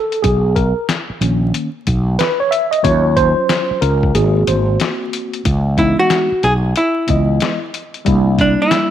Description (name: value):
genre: hip hop, jazz-hop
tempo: 92 BPM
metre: 4/4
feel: swing 64% on 16ths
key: C# dorian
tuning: A4 = 440 Hz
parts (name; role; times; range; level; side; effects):
- mellow tine electric piano; accompaniment; 0.0-8.9 s; D#3 to E5; -17 LUFS; right 1 dB; medium stereo tremolo
- lo-fi sampler-style drum kit; drums; 0.1-8.9 s; hi-hat, kick drum, snare drum; -20 LUFS; left 2 dB; none
- fretless electric bass; bass; 0.2-8.5 s; G#1 to D#2; -15 LUFS; equal; none
- archtop guitar, miked and amplified; melody; 5.8-8.9 s; D4 to G#4; -15 LUFS; equal; none
room: light reverb, digital ambience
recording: 1960s-style stereo, vinyl crackle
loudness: -13 LUFS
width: side -10 dB against mid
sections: 0.0-5.5 A section; 5.5-8.9 B section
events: tine electric piano solo 0.0-5.5; break 4.1-5.5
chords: 0.2 Bmaj9; 2.8 D#m9; 4.1 G#7; 5.5 C#m7; 8.1 C9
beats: | 0.23 0.89 1.54 2.19 | 2.84 3.49 4.14 4.80 | 5.45 6.10 6.75 7.41 | 8.06 8.71